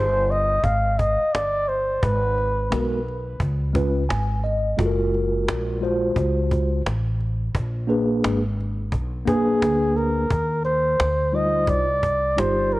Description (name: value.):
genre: hip hop, jazz-hop.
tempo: 87 BPM.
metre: 4/4.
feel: swing 64% on 16ths.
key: Eb major.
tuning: A4 = 439 Hz.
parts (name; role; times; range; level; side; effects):
breathy flugelhorn; melody; 0.0-3.1, 9.3-12.8 s; Ab4 to F5; -22 LUFS; equal; analog delay.
mellow tine electric piano; accompaniment; 0.0-12.8 s; G3 to Ab5; -23 LUFS; equal; medium stereo tremolo.
upright bass; bass; 0.0-12.8 s; Gb1 to Eb2; -25 LUFS; equal; none.
cajon; drums; 0.3-12.8 s; none; -26 LUFS; equal; none.
room: light reverb, small room ambience.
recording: worn, warbling old tape, cassette tape, warbly pitch drift.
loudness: -20 LUFS.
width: side -18 dB against mid.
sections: 0.0-10.3 A section; 10.3-12.8 A section.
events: tine electric piano fill 3.8-4.8.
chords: 0.0 Fm9 (rootless); 2.0 Abm9; 3.4 Db7; 4.8 Gbmaj9; 7.5 Bb7b9; 10.3 Eb69.